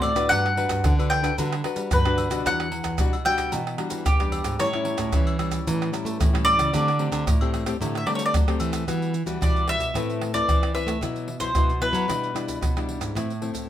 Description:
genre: samba and choro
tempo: 112 BPM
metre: 4/4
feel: straight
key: E minor from 8.9 s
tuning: A4 = 441 Hz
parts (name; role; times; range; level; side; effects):
- mandolin; melody; 0.0-12.8 s; G4 to G5; -24 LUFS; equal; none
- nylon-string guitar; accompaniment; 0.0-13.7 s; A2 to B4; -29 LUFS; left 5 dB; none
- nylon-string guitar; bass; 0.0-13.7 s; E2 to A3; -29 LUFS; right 2 dB; none
- agogo bells, pandeiro, maracas, surdo and tamborim; percussion; 0.0-13.7 s; none; -25 LUFS; right 1 dB; none
room: light reverb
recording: minimal, uncompressed stereo recording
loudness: -21 LUFS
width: side -11 dB against mid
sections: 0.0-8.9 A section; 8.9-13.7 B section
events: none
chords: 0.3 Gmaj7; 2.5 Em9; 4.6 A7; 6.7 D7sus4; 8.9 Emadd9; 9.9 Amadd9; 11.0 Bsus4; 12.1 Em7/B; 13.2 Am

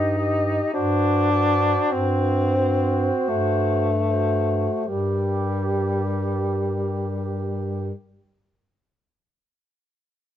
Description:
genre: classical, lyrical piece for single-reed quartet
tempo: 36-55 BPM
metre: 3/4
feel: rubato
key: G minor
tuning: A4 = 439 Hz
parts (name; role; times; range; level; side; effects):
- mellow clarinet; melody; 0.0-7.9 s; Bb4 to Eb5; -32 LUFS; equal; none
- mellow alto saxophone; second line; 0.0-7.9 s; F#4 to G4; -29 LUFS; right 6 dB; none
- mellow tenor saxophone; accompaniment; 0.0-7.9 s; G3 to Eb4; -23 LUFS; left 3 dB; none
- mellow bass clarinet; bass; 0.0-7.9 s; G2; -24 LUFS; right 1 dB; none
room: light reverb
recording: dark, warm production, nothing above 7.8 kHz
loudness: -20 LUFS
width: side -11 dB against mid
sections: 0.0-4.9 A section; 4.9-9.2 B section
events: slowing down 0.0-4.9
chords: 0.0 Cm/G (rootless); 0.7 D7/G; 4.9 Gm

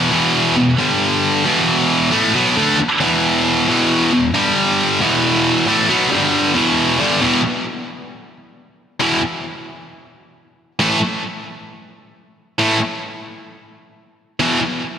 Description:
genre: rock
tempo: 134 BPM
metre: 4/4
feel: straight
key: unclear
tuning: A4 = 440 Hz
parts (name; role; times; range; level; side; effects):
- high-gain distorted guitar; solo; 0.0-14.6 s; E2 to D4; -14 LUFS; equal; distortion, digital delay
room: wet lush hall reverb, RT60 2.4 s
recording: big arena sound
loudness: -14 LUFS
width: side -8 dB against mid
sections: 0.1-7.2 A section; 7.2-15.0 B section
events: none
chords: 0.1 E5; 0.8 G5; 1.4 E5; 4.3 G5; 5.0 E5; 6.1 G5; 6.5 E5; 10.8 A5; 14.4 E5

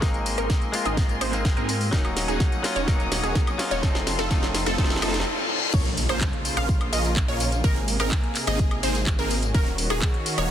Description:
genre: EDM, festival progressive house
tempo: 126 BPM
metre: 4/4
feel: straight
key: Bb minor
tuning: A4 = 440 Hz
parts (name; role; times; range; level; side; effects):
- direct-recorded clean electric guitar; accompaniment; 0.0-5.2 s; F3 to F4; -31 LUFS; left 2 dB; sidechain pumping, digital delay
- warm studio string section; sustained chords; 0.0-10.5 s; C3 to Eb6; -33 LUFS; left 1 dB; sidechain pumping
- wide unison pluck; arpeggios; 0.0-10.5 s; Ab4 to F5; -31 LUFS; equal; phaser, sidechain pumping, digital delay
- supersaw chords; riff; 0.0-10.5 s; A3 to F5; -31 LUFS; right 1 dB; phaser, sidechain pumping, low-pass filter, digital delay
- wide detuned saw bass; bass; 0.0-10.5 s; Eb1 to Ab2; -29 LUFS; equal; chorus, sidechain pumping
- electronic kick drum; drums; 0.0-10.1 s; none; -23 LUFS; equal; none
- house drum kit; drums; 0.0-10.5 s; crash cymbal, handclaps, hi-hat, snare drum, tambourine, woodblock; -29 LUFS; equal; high-pass filter on snare, high-pass filter on hats, high-pass filter on perc, high-pass filter on cymbals, high-pass filter on room
- riser, reverse cymbal and impact; sound effects; 2.1-7.6 s; none; -33 LUFS; left 1 dB; none
room: light reverb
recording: dense, heavily limited modern master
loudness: -21 LUFS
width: side -10 dB against mid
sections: 0.0-5.7 A section; 5.7-10.5 B section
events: build-up 0.0-5.7; drum fill 0.0-5.3; filter sweep on supersaw synth 0.0-5.7; filter sweep on synth pluck 0.0-5.7; reverse cymbal 4.8-5.7; drop 5.7-10.5; impact 5.7-7.6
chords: 0.0 Abadd9; 1.9 Ebm7; 3.8 F; 5.7 Bbm; 7.6 Abadd9; 9.5 Ebm7

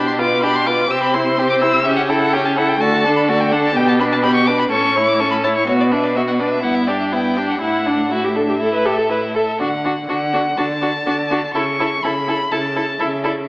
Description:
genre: quick classical-period movement for string quartet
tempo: 124 BPM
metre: 4/4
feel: straight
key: D major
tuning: A4 = 441 Hz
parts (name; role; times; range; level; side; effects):
- warm violin; melody; 0.0-13.3 s; C#5 to E6; -21 LUFS; left 1 dB; none
- warm violin; second line; 0.0-13.3 s; D4 to C#5; -20 LUFS; equal; none
- rich viola; accompaniment; 0.0-13.3 s; A3 to B4; -19 LUFS; equal; none
- rich cello; bass; 0.0-13.4 s; G2 to D3; -23 LUFS; right 1 dB; none
room: wet recital hall reverb, RT60 1.3 s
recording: AM radio sound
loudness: -14 LUFS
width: side -25 dB against mid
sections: 0.0-9.6 A section; 9.6-13.5 B section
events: none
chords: 0.0 G7/B; 0.9 C; 1.9 A7/C#; 2.8 D; 3.8 G/B; 4.7 A; 5.7 Bm; 6.6 Em7/G; 7.6 Asus4; 8.6 A5; 9.6 D; 11.6 A/C#

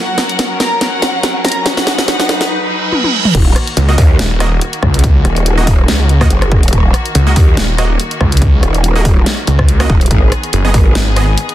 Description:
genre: heavy wobble dubstep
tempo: 142 BPM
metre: 4/4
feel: swing 55% on 16ths, half-time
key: Eb minor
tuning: A4 = 442 Hz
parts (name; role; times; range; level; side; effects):
- warm symphonic violin section; melody; 0.0-2.5 s; Gb4 to Bb5; -18 LUFS; equal; tape echo
- clear symphonic string section; sustained chords; 0.0-11.5 s; Eb3 to B4; -22 LUFS; left 2 dB; sidechain pumping
- riser and reverse cymbal; sound effects; 0.0-3.3 s; none; -20 LUFS; right 2 dB; none
- dubstep drum kit; drums; 0.2-11.5 s; crash cymbal, hi-hat, rim click, snare drum, toms; -17 LUFS; equal; none
- growl bass; bass; 3.3-10.9 s; Eb1 to Eb2; -13 LUFS; equal; chorus, overdrive
- electronic kick drum; drums; 3.3-10.8 s; none; -11 LUFS; equal; none
- snarling distorted saw bass; bass; 3.8-11.4 s; Eb1 to Db2; -12 LUFS; equal; distortion, overdrive
- supersaw stab; stabs; 3.9-11.2 s; Bb3 to Eb5; -21 LUFS; right 3 dB; cassette tape, tape echo
room: light reverb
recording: dense, heavily limited modern master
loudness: -9 LUFS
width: side -13 dB against mid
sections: 0.0-3.3 A section; 3.3-11.5 B section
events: build-up 0.0-3.3; drum fill 0.0-2.5, 2.9-3.3; reverse cymbal 2.5-3.3; drop 3.3-11.5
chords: 0.0 Gb; 1.7 B; 3.3 Ebm; 10.1 Abm

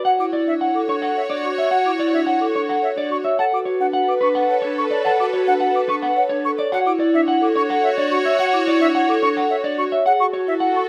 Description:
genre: classical, minimalist pattern music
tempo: 108 BPM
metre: 3/4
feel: straight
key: D major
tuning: A4 = 440 Hz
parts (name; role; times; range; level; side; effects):
- electric guitar through a small old amp; melody; 0.0-10.8 s; B4 to F#5; -24 LUFS; equal; none
- vibraphone with soft mallets; arpeggios; 0.0-10.9 s; D4 to C#5; -23 LUFS; equal; none
- warm studio string section; sustained chords; 0.1-10.9 s; F#4 to C#5; -30 LUFS; equal; none
- silver concert flute; arpeggios; 0.1-10.8 s; E5 to D6; -26 LUFS; equal; none
room: light reverb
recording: close, detailed microphones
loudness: -19 LUFS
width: mono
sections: 0.1-10.9 A section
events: none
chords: 0.1 Dmaj7; 3.4 Bm7/D; 6.7 Dmaj7; 10.1 F#m7

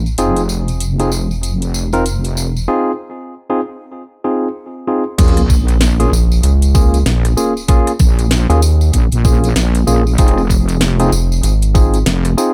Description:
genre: glitch hop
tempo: 96 BPM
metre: 4/4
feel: swing 60% on 16ths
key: Bb minor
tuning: A4 = 439 Hz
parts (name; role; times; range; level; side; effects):
- wobble bass; bass; 0.0-12.4 s; F1 to Bb1; -17 LUFS; equal; chorus
- tambourine; percussion; 0.1-12.5 s; none; -30 LUFS; equal; none
- tine electric piano; stabs; 0.2-12.5 s; Bb3 to Bb4; -20 LUFS; equal; sidechain pumping, digital delay
- drum and bass drum kit; drums; 0.2-12.3 s; crash cymbal, hi-hat, rim click, snare drum; -23 LUFS; equal; none
- electronic kick drum; drums; 5.2-11.9 s; none; -14 LUFS; equal; none
- sub drop; sound effects; 5.2-7.7 s; none; -23 LUFS; equal; none
- rubbery square bass; bass; 6.1-12.0 s; F1 to Eb2; -14 LUFS; equal; none
room: little or no reverb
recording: none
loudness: -14 LUFS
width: mono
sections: 0.0-5.2 A section; 5.2-12.5 B section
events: break 2.7-5.2; drop 5.2-12.5; impact 5.2-7.7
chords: 0.2 Fm7; 5.2 Bbm7; 10.2 Fm7

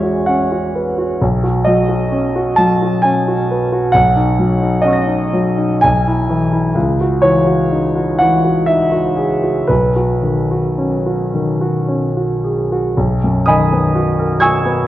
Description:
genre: classical, impressionist solo piano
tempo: 54-68 BPM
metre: 3/4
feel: rubato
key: B major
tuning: A4 = 435 Hz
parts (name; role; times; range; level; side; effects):
- warm grand piano; solo; 0.0-14.9 s; B1 to A#6; -13 LUFS; equal; none
room: wet scoring stage reverb, RT60 1.5 s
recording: worn, warbling old tape, cassette tape, warbly pitch drift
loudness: -13 LUFS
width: side -14 dB against mid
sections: 0.0-13.0 A section; 13.0-14.9 A section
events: none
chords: 0.0 E69; 1.2 Badd9; 3.9 D#m7/B; 5.8 E/B; 6.8 C#madd9; 9.7 B69; 13.0 Bmaj7

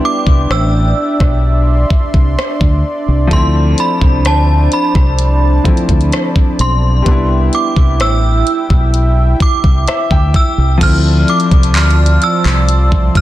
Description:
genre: contemporary R&B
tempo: 64 BPM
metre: 4/4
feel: straight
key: D dorian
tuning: A4 = 440 Hz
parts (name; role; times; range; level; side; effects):
- synth chime; melody; 0.0-13.2 s; A5 to F6; -18 LUFS; right 1 dB; ensemble chorus, ping-pong delay
- clear baby grand piano; accompaniment; 0.0-13.2 s; F3 to G5; -20 LUFS; left 2 dB; none
- warm analog pad; sustained chords; 0.0-13.2 s; F3 to C6; -19 LUFS; right 1 dB; chorus
- deep dub fingered electric bass; bass; 0.3-13.2 s; A1 to D2; -12 LUFS; equal; none
- smooth R&B drum kit; drums; 0.3-13.2 s; crash cymbal, handclaps, hi-hat, kick drum, rim click; -13 LUFS; equal; vintage 12-bit sampler grit
room: digital ambience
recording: dense, heavily limited modern master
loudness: -9 LUFS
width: side -14 dB against mid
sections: 0.0-10.8 A section; 10.8-13.2 B section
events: grand piano fill 9.4-10.8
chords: 0.0 Cmaj9; 3.3 Dm7; 7.1 Cmaj7; 10.8 Dm7

